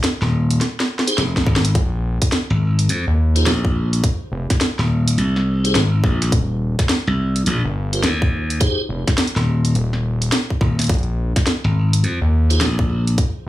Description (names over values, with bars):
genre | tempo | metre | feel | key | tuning
glitch hop | 105 BPM | 4/4 | swing 63% on 16ths | F minor | A4 = 440 Hz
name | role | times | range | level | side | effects
drum and bass drum kit | drums | 0.0-13.3 s | hi-hat, snare drum | -21 LUFS | equal | none
glassy slap bass | bass | 0.2-13.2 s | Eb1 to F2 | -17 LUFS | equal | none
tonewheel organ | stabs | 1.1-8.8, 12.5-12.7 s | Eb4 to C5 | -25 LUFS | equal | chorus vibrato, slow rotary speaker, sidechain pumping, low-pass filter, dub echo
electronic kick drum | drums | 1.4-13.3 s | none | -18 LUFS | equal | none
gritty driven synth bass | bass | 1.8-13.5 s | Eb1 to Eb2 | -18 LUFS | equal | tube saturation
room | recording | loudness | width
little or no reverb | studio reverb | -16 LUFS | side -15 dB against mid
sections
0.0-13.5 A section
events
drum fill 0.6-1.8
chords
0.0 Fm7; 1.8 Bb7sus4; 4.0 Fm7; 6.3 Eb69; 8.6 Fm7; 10.9 Bb7sus4